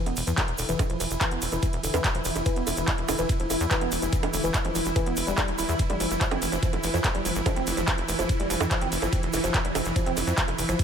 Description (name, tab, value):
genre	psychedelic trance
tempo	144 BPM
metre	4/4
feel	straight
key	unclear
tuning	A4 = 440 Hz
part	swarming drone	sustained chords	0.2-10.8 s	E3 to E4	-30 LUFS	right 1 dB	built-in reverb, sidechain pumping
part	woody wave-folded pluck	riff	0.0-10.8 s	D3 to E4	-31 LUFS	moving between left 3 dB and right 4 dB	chorus, auto-pan, sidechain pumping, ping-pong delay
part	tight sequencer bass	bass	0.1-10.7 s	D1 to F2	-31 LUFS	equal	none
part	drum and bass drum kit	drums	0.1-10.8 s	bongos, handclaps, hi-hat, ride cymbal	-29 LUFS	right 2 dB	none
part	egg shaker	percussion	0.2-10.8 s	none	-37 LUFS	right 4 dB	none
part	electronic kick drum	drums	0.4-10.8 s	none	-26 LUFS	equal	none
room	light reverb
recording	none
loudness	-23 LUFS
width	side -7 dB against mid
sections	0.0-10.8 A section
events	none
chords	0.0 E5; 5.8 F5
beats	0.38 | 0.79 1.21 1.63 2.04 | 2.46 2.88 3.29 3.71 | 4.13 4.54 4.96 5.38 | 5.79 6.21 6.63 7.04 | 7.46 7.88 8.29 8.71 | 9.13 9.54 9.96 10.38 | 10.79